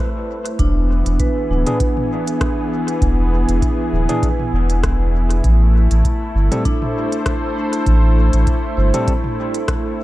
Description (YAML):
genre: ambient dub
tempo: 99 BPM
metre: 4/4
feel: swing 55% on 16ths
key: A minor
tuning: A4 = 442 Hz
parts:
  - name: warm analog pad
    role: sustained chords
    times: 0.0-10.0 s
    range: E3 to C5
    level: -22 LUFS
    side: left 1 dB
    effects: wide subtle chorus
  - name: organic electronic drum kit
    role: drums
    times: 0.5-9.8 s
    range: hi-hat, rim click, toms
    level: -28 LUFS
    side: equal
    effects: dub echo
  - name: vibraphone with medium mallets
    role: arpeggios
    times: 0.6-10.0 s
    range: D4 to C5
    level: -25 LUFS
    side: right 1 dB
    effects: dub echo
  - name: warm sub bass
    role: bass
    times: 0.6-8.9 s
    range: D1 to A1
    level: -14 LUFS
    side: equal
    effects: none
  - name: electronic kick drum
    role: drums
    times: 0.6-9.8 s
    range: none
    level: -20 LUFS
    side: equal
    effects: none
  - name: overdriven tine electric piano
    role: stabs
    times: 1.7-9.1 s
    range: E3 to A4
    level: -29 LUFS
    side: left 2 dB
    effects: dub echo
room: digital ambience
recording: none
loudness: -15 LUFS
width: side -16 dB against mid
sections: 0.0-10.0 A section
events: none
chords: 0.0 Am; 0.6 E7; 5.4 Am7